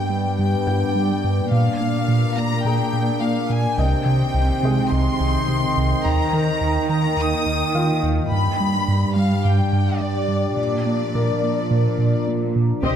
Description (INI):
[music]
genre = cinematic, hybrid orchestral and electronic film score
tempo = 106 BPM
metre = 4/4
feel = straight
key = unclear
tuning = A4 = 441 Hz
[part]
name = rich studio violin section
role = melody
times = 0.0-12.2 s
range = D5 to Eb6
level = -26 LUFS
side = left 3 dB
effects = none
[part]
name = analog drone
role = sustained chords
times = 0.0-13.0 s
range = Eb3 to G5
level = -25 LUFS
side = left 2 dB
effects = chorus
[part]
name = rich symphonic cello section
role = bass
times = 0.0-13.0 s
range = G2 to G4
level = -24 LUFS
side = right 3 dB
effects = none
[part]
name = felt-muted upright piano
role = texture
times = 0.0-12.9 s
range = Ab3 to Bb5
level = -32 LUFS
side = left 3 dB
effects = ping-pong delay
[part]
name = smooth synth bass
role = riff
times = 0.1-13.0 s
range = C2 to Bb3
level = -21 LUFS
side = right 1 dB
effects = none
[part]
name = dark symphonic violin section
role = second line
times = 12.8-13.0 s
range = Eb5 to G5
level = -23 LUFS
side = left 8 dB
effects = none
[part]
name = warm symphonic viola section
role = accompaniment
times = 12.8-12.9 s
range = C4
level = -23 LUFS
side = right 1 dB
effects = none
[part]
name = taiko ensemble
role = drums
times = 12.8-13.0 s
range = none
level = -27 LUFS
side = left 1 dB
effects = none
[sound]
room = moderate scoring stage reverb, RT60 1.7 s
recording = none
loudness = -18 LUFS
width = side -9 dB against mid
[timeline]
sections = 0.0-12.8 A section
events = none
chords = 0.0 G; 1.5 Bb; 3.8 Cm; 6.0 Eb; 8.3 G; 10.6 Bb